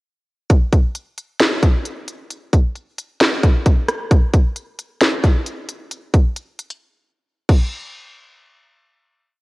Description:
hip hop; 133 BPM; 4/4; half-time
trap drum kit; drums; 0.5-7.6 s; crash cymbal, hi-hat, kick drum, rim click, snare drum; -14 LUFS; equal; cassette tape
light reverb, digital ambience; home recording on cassette; -15 LUFS; side -22 dB against mid
0.5-7.7 hook; 7.7-9.4 final hit
drums muted 6.8-7.7
| 0.50 0.95 1.40 1.85 | 2.30 2.75 3.21 3.66 | 4.11 4.56 5.01 5.46 | 5.91 6.36 6.82 7.27

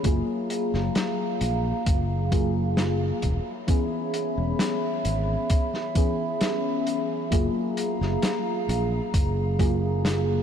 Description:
vaporwave; 66 BPM; 4/4; straight; F# major; A4 = 441 Hz
mellow FM electric piano; accompaniment; 0.0-10.4 s; E3 to G#4; -28 LUFS; left 2 dB; wide subtle chorus, ping-pong delay
warbly tape-like pad; sustained chords; 0.0-10.4 s; G#4 to B5; -31 LUFS; right 3 dB; chorus, built-in reverb
fingered electric bass; bass; 0.0-10.4 s; E1 to A#1; -26 LUFS; equal
electronic kick drum; drums; 0.0-9.8 s; -23 LUFS; equal
vintage drum kit; drums; 0.0-10.2 s; hi-hat, snare drum; -31 LUFS; equal
moderate huge ambient reverb, RT60 8.5 s; dreamy mix soaked in reverb; -23 LUFS; side -8 dB against mid
0.0-10.4 A section
0.1 F#maj9; 3.2 E6; 7.3 F#maj9
| 0.05 0.96 1.87 2.78 | 3.69 4.60 5.50 6.41 | 7.32 8.23 9.14 10.05

